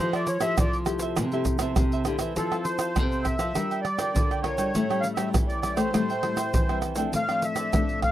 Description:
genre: samba and choro.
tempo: 101 BPM.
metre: 4/4.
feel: straight.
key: F major.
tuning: A4 = 436 Hz.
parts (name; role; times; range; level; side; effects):
accordion; melody; 0.0-8.1 s; A4 to F5; -28 LUFS; equal; light tremolo tuning.
cavaquinho; accompaniment; 0.0-8.1 s; E4 to G5; -35 LUFS; right 8 dB; none.
nylon-string guitar; accompaniment; 0.0-8.1 s; A2 to Bb4; -33 LUFS; left 6 dB; none.
nylon-string guitar; bass; 0.0-8.1 s; C3 to A3; -30 LUFS; left 1 dB; none.
tube shaker, pandeiro, tamborim and surdo; percussion; 0.1-8.1 s; none; -26 LUFS; right 1 dB; none.
room: little or no reverb.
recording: dry, close 1970s-style studio recording.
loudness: -23 LUFS.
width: side -12 dB against mid.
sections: 0.0-2.4 A section; 2.4-8.1 B section.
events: accordion solo 0.0-2.4.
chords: 0.0 Fmaj9; 2.4 Fmaj7; 3.6 Gm7; 4.8 A7; 5.9 Am7; 7.1 Dm7/A.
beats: 0.58 1.18 1.77 | 2.37 2.96 3.56 4.15 | 4.75 5.35 5.95 6.54 | 7.14 7.74.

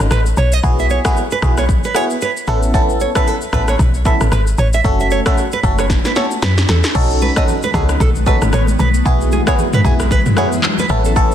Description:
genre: afrobeats.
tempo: 114 BPM.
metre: 4/4.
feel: swing 58% on 16ths.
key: E major.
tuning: A4 = 440 Hz.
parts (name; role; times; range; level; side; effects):
barking FM electric piano; accompaniment; 0.0-11.3 s; A3 to A4; -20 LUFS; equal; phaser.
woody log drum bass; bass; 0.0-11.3 s; F#1 to F#2; -16 LUFS; equal; none.
deep house drum kit; drums; 0.0-11.3 s; crash cymbal, handclaps, kick drum, rim click, shaker, snare drum, toms; -17 LUFS; equal; overdrive, vintage 12-bit sampler grit.
nylon-string guitar; riff; 0.1-11.1 s; G#4 to E5; -21 LUFS; right 5 dB; digital delay.
granular cloud pad; sustained chords; 7.6-11.3 s; C#3 to B3; -22 LUFS; left 2 dB; built-in reverb.
congas; percussion; 7.2-11.0 s; none; -27 LUFS; left 3 dB; none.
room: little or no reverb.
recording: dense, heavily limited modern master.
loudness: -12 LUFS.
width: side -10 dB against mid.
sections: 0.0-7.0 A section; 7.0-11.3 B section.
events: drum fill 5.9-7.0.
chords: 0.0 B7(no3); 0.6 Eadd9/B; 2.5 Aadd9; 4.8 F#m; 7.0 B7; 9.1 Eadd9/B.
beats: 0.11 | 0.64 1.16 1.69 2.21 | 2.74 3.27 3.79 4.32 | 4.85 5.37 5.90 6.42 | 6.95 7.48 8.00 8.53 | 9.06 9.58 10.11 10.63 | 11.16.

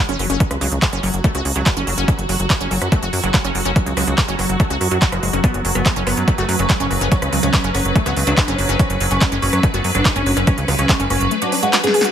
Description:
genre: psychedelic trance.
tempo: 143 BPM.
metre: 4/4.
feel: straight.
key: unclear.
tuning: A4 = 440 Hz.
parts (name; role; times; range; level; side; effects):
swarming drone; sustained chords; 0.1-12.1 s; F#3 to B4; -24 LUFS; right 1 dB; built-in reverb, sidechain pumping.
wide unison pluck; riff; 0.0-12.1 s; E#3 to G#4; -25 LUFS; equal; auto-pan, sidechain pumping, tape echo.
plucky analog bass; bass; 0.1-11.3 s; F#1 to F#2; -21 LUFS; equal; none.
big-room dance drum kit; drums; 0.1-12.1 s; handclaps, hi-hat, rim click, snare drum; -22 LUFS; right 1 dB; overdrive.
electronic kick drum; drums; 0.4-11.0 s; none; -17 LUFS; equal; overdrive.
oud; melody; 5.4-12.0 s; A3 to G#4; -22 LUFS; equal; phaser, sidechain pumping, tape echo.
room: digital ambience.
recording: none.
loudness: -15 LUFS.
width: side -9 dB against mid.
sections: 0.0-12.1 A section.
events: drum fill 11.7-12.1.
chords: 0.0 F#5.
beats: | 0.40 0.82 1.24 1.66 | 2.08 2.50 2.92 3.34 | 3.76 4.18 4.60 5.02 | 5.44 5.86 6.28 6.70 | 7.12 7.54 7.96 8.38 | 8.79 9.21 9.63 10.05 | 10.47 10.89 11.31 11.73.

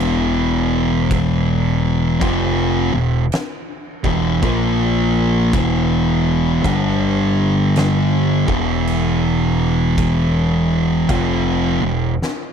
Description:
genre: stoner and doom metal.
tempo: 54 BPM.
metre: 4/4.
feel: swing 65% on 8ths.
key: E minor.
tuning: A4 = 438 Hz.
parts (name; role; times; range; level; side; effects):
fuzz guitar; riff; 0.0-12.1 s; E2 to A#3; -19 LUFS; left 11 dB; distortion.
thick fuzz guitar; riff; 0.0-12.1 s; E2 to A#3; -19 LUFS; right 9 dB; distortion.
growling fingered electric bass; bass; 0.0-12.2 s; E1 to A#1; -22 LUFS; equal; overdrive.
oversized low-tuned drum kit; drums; 0.0-12.5 s; crash cymbal, kick drum, snare drum; -27 LUFS; equal; none.
room: little or no reverb.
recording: none.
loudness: -15 LUFS.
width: side -7 dB against mid.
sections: 0.0-12.5 A section.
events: drum fill 12.2-12.5.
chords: 0.0 E5; 4.4 A#5; 5.5 E5; 6.7 G5; 8.3 E5.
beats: 0.01 | 1.11 2.22 3.33 4.44 | 5.54 6.66 7.76 8.88 | 9.99 11.10 12.21.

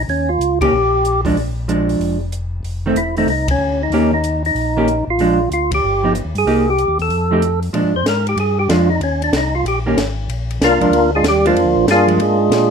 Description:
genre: soul jazz organ trio.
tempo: 188 BPM.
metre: 4/4.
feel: swing 64% on 8ths.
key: Bb mixolydian.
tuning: A4 = 440 Hz.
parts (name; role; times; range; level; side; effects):
percussive tonewheel organ; melody; 0.0-12.7 s; F3 to C5; -16 LUFS; right 1 dB; slow rotary speaker, overdrive, plate reverb.
mellow tonewheel organ; bass; 0.0-12.7 s; E1 to Bb2; -21 LUFS; left 1 dB; chorus vibrato, slow rotary speaker.
compact cocktail drum kit; drums; 0.1-12.6 s; hi-hat, kick drum, ride cymbal, snare drum; -24 LUFS; equal; none.
hollow-body jazz guitar; accompaniment; 0.6-12.2 s; Eb3 to G4; -18 LUFS; right 2 dB; none.
room: light reverb.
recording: none.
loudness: -14 LUFS.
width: side -6 dB against mid.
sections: 0.0-7.7 A section; 7.7-12.7 B section.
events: band accent 0.6, 3.4, 5.7; tonewheel organ solo 7.7-12.7.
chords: 0.0 Eb7; 1.4 Bb7; 2.6 F7; 3.9 Eb7; 5.2 Bb7; 5.8 G7b13; 6.5 Cm7; 7.1 F9; 7.7 Bb7; 9.0 Eb7(no3); 10.3 Bb7.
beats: | 0.09 0.41 0.72 1.04 | 1.36 1.68 2.00 2.32 | 2.64 2.96 3.27 3.59 | 3.91 4.23 4.55 4.87 | 5.19 5.51 5.82 6.14 | 6.46 6.78 7.10 7.42 | 7.74 8.05 8.37 8.69 | 9.01 9.33 9.65 9.97 | 10.29 10.60 10.92 11.24 | 11.56 11.88 12.20 12.51.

